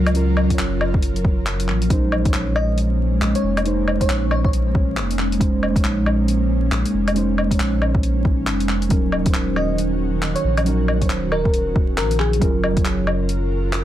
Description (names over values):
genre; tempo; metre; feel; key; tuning
future garage; 137 BPM; 4/4; swing 61% on 16ths; Bb minor; A4 = 437 Hz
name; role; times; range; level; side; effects
muted felt-like synth keys; accompaniment; 0.0-13.8 s; Gb3 to Db5; -24 LUFS; right 2 dB; chorus, vintage 12-bit sampler grit, sidechain pumping, analog delay
ethereal airy pad; sustained chords; 0.0-13.8 s; Eb3 to Bb4; -25 LUFS; equal; ensemble chorus, built-in reverb, sidechain pumping
warm sub bass; bass; 0.0-13.8 s; Eb1 to Db2; -22 LUFS; equal; sidechain pumping
deep house drum kit; drums; 0.1-13.8 s; handclaps, hi-hat, woodblock; -25 LUFS; left 2 dB; overdrive
electronic kick drum; drums; 0.5-12.8 s; none; -20 LUFS; equal; overdrive
bell-like FM electric piano; melody; 2.6-4.5, 9.6-12.5 s; Ab4 to Eb5; -27 LUFS; left 1 dB; chorus, phaser, analog delay
room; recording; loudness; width
light reverb; dense, heavily limited modern master, vinyl crackle; -17 LUFS; side -12 dB against mid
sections
0.0-13.8 A section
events
none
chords
0.0 Gbmaj7; 1.9 Bbm11; 8.9 Ebm7; 12.4 Gbmaj7